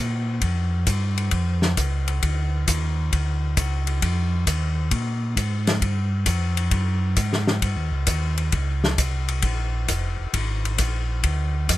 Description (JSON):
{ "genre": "soul jazz organ trio", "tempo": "133 BPM", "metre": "4/4", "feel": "swing 67% on 8ths", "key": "unclear", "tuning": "A4 = 440 Hz", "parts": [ { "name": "mellow tonewheel organ", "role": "bass", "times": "0.0-11.8 s", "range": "F1 to Bb2", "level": "-23 LUFS", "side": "equal", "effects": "chorus vibrato, slow rotary speaker" }, { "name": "warm soul drum kit", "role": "drums", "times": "0.4-11.8 s", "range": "hi-hat, kick drum, ride cymbal, snare drum", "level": "-25 LUFS", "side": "left 2 dB", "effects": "none" } ], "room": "little or no reverb", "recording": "none", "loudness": "-21 LUFS", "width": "side -15 dB against mid", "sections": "0.0-11.8 A section", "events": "none", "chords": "none", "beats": "| 0.43 0.88 1.33 1.78 | 2.23 2.67 3.12 3.58 | 4.03 4.47 4.92 5.38 | 5.83 6.28 6.73 7.18 | 7.63 8.08 8.54 8.99 | 9.44 9.89 10.34 10.80 | 11.25 11.70" }